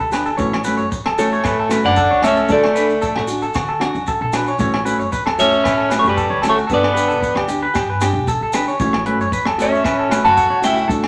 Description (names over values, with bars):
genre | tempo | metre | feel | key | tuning
highlife guitar band | 114 BPM | 4/4 | straight | A mixolydian | A4 = 440 Hz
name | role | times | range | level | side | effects
clean electric guitar | melody | 0.0-10.9 s | G4 to A5 | -19 LUFS | equal | phaser
raspy tenor saxophone | second line | 0.0-10.9 s | G3 to F#4 | -23 LUFS | equal | none
clean electric guitar | arpeggios | 0.0-11.1 s | F#4 to C#5 | -24 LUFS | equal | none
upright bass | bass | 0.0-11.1 s | E1 to D3 | -30 LUFS | equal | none
mellow electric guitar | accompaniment | 0.1-11.1 s | E3 to G4 | -25 LUFS | equal | none
compact cocktail drum kit | drums | 0.1-11.1 s | hi-hat, kick drum, rim click | -28 LUFS | equal | none
agogo bells | percussion | 0.1-11.1 s | none | -28 LUFS | equal | none
maracas | percussion | 0.1-11.0 s | none | -37 LUFS | equal | none
room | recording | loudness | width
wet studio reverb, RT60 0.8 s | none | -17 LUFS | mono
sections
0.4-11.1 A section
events
none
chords
0.4 A6; 2.5 D; 4.6 A6; 6.7 G; 8.8 A6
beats
| 0.40 0.93 1.45 1.98 | 2.50 3.03 3.55 4.08 | 4.60 5.13 5.65 6.18 | 6.70 7.23 7.75 8.28 | 8.80 9.33 9.85 10.38 | 10.90